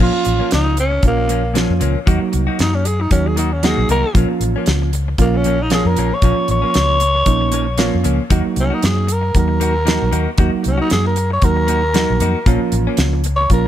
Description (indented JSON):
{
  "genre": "straight-eighth soul blues",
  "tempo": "116 BPM",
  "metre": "4/4",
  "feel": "swing 56% on 16ths",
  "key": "Bb minor",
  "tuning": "A4 = 445 Hz",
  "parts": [
    { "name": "growling tenor saxophone", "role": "melody", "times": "0.0-13.7 s", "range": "Bb3 to Db5", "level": "-19 LUFS", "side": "equal", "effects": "none" },
    { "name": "reed electric piano", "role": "accompaniment", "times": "0.0-13.7 s", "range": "F3 to Gb4", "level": "-21 LUFS", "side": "right 6 dB", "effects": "none" },
    { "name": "direct-recorded clean electric guitar", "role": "stabs", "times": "0.0-13.4 s", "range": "Bb2 to Gb4", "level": "-25 LUFS", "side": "left 8 dB", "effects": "spring reverb" },
    { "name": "vintage muted fingered electric bass", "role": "bass", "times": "0.0-13.7 s", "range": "A1 to Gb2", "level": "-18 LUFS", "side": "left 1 dB", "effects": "none" },
    { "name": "damped 70s drum kit", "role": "drums", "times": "0.2-13.6 s", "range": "hi-hat, kick drum, snare drum", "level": "-18 LUFS", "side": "equal", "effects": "none" }
  ],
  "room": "little or no reverb",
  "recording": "none",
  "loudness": "-14 LUFS",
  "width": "side -11 dB against mid",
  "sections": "0.0-13.7 A section",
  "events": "tenor saxophone solo 0.0-13.7",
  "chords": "0.0 Bbm; 2.1 Ebm; 4.2 Bbm; 8.3 Ebm; 12.5 Bbm"
}